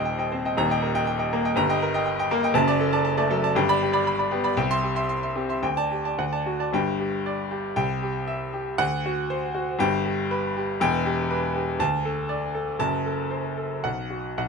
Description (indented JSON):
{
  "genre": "classical, virtuoso piano study",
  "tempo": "106-124 BPM",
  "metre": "2/4",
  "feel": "rubato",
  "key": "G major, E minor from 10.8 s",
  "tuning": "A4 = 440 Hz",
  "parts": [
    { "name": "clear baby grand piano", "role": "solo", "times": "0.0-14.5 s", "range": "Eb1 to C6", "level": "-22 LUFS", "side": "equal", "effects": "none" }
  ],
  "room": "little or no reverb",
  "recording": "close, detailed microphones",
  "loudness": "-22 LUFS",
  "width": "side -5 dB against mid",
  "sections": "0.0-6.7 A section; 6.7-14.5 B section",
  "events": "none",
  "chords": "0.0 Cm/Eb; 0.6 Eb; 1.6 Eb/G; 2.5 D/F#; 3.6 G; 4.6 C; 5.6 Dsus4; 6.2 D; 6.7 G5; 7.8 C; 8.8 D7; 9.8 G; 10.8 Em; 11.8 D5; 12.8 F#dim; 13.8 B5"
}